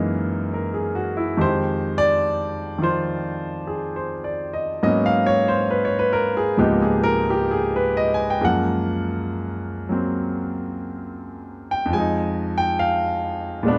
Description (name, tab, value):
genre	solo jazz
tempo	69 BPM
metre	4/4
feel	swing 67% on 8ths, rubato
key	unclear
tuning	A4 = 440 Hz
part	clear grand piano	solo	0.0-13.8 s	Db2 to Ab5	-22 LUFS	equal	none
room	light reverb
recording	dark, warm production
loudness	-22 LUFS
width	mono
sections	0.0-13.8 A section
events	grand piano solo 0.0-13.8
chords	0.0 Gb13; 1.4 Fm9; 4.8 Abm11; 6.6 Db13; 8.4 Gbmaj9; 11.9 Fm7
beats	0.54 | 1.40 2.25 3.11 3.97 | 4.83 5.70 6.59 7.50 | 8.42 9.31 10.18 11.05 | 11.92 12.80 13.67